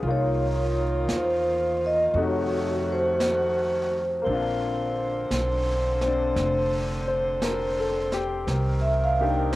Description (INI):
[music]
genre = jazz ballad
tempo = 57 BPM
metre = 4/4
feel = swing 69% on 8ths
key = Bb major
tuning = A4 = 440 Hz
[part]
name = clear upright piano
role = accompaniment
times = 0.0-9.6 s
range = C3 to C5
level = -29 LUFS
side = left 4 dB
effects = cassette tape
[part]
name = warm saxophone section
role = sustained chords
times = 0.0-9.6 s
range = D3 to C5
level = -29 LUFS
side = equal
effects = cassette tape
[part]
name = upright bass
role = bass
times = 0.0-9.6 s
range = F1 to F2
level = -28 LUFS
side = right 1 dB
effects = none
[part]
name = jazz brush drum kit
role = drums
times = 0.0-9.6 s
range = brushed snare drum, hi-hat, snare drum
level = -35 LUFS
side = right 1 dB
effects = cassette tape
[part]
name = vibraphone with medium mallets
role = melody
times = 0.1-9.5 s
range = C5 to G5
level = -25 LUFS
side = right 1 dB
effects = cassette tape
[sound]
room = light reverb, studio reverb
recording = home recording on cassette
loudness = -22 LUFS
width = side -17 dB against mid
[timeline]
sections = 0.0-9.6 A section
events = vibraphone solo 0.0-9.6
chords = 0.0 Cm7; 2.1 F7b9; 4.3 Bbadd9; 8.5 Cm7